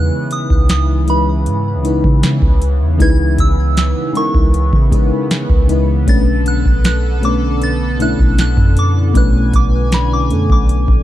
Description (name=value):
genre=contemporary R&B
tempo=78 BPM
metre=4/4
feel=straight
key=unclear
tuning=A4 = 436 Hz
part: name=soft synth bell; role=melody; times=0.0-11.0 s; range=B5 to A6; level=-23 LUFS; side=right 1 dB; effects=chorus, phaser, ping-pong delay
part: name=FM electric piano with soft pad layer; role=accompaniment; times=0.0-11.0 s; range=B2 to B4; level=-19 LUFS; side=left 3 dB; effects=chorus, tremolo
part: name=chorused pulse-width pad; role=sustained chords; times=0.0-11.0 s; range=C#3 to G#5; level=-23 LUFS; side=right 2 dB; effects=none
part: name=soft 808-style bass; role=bass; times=0.0-11.0 s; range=B1 to C#3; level=-15 LUFS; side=equal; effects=none
part: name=booming analog drum machine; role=drums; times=0.3-11.0 s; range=hi-hat, kick drum, snare drum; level=-14 LUFS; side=equal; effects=overdrive
room=little or no reverb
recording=dark, warm production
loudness=-11 LUFS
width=side -14 dB against mid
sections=0.0-11.0 A section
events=none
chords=0.0 C#m7; 6.1 Bm7